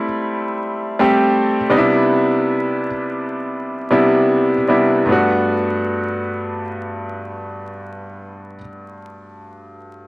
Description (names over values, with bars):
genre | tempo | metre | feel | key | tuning
R&B | 75-88 BPM | 4/4 | swing 58% on 16ths | G major | A4 = 441 Hz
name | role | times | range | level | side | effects
bright grand piano | accompaniment | 0.0-10.1 s | G2 to G4 | -16 LUFS | equal | cassette tape
room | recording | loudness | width
wet spring reverb, RT60 1.3 s, studio ambience | home recording on cassette, vinyl crackle | -15 LUFS | side -22 dB against mid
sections
0.0-5.1 A section; 5.1-8.3 B section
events
slowing down 0.0-5.1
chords
0.0 Fmaj9 (rootless); 1.7 Cmaj9; 5.1 Gmaj9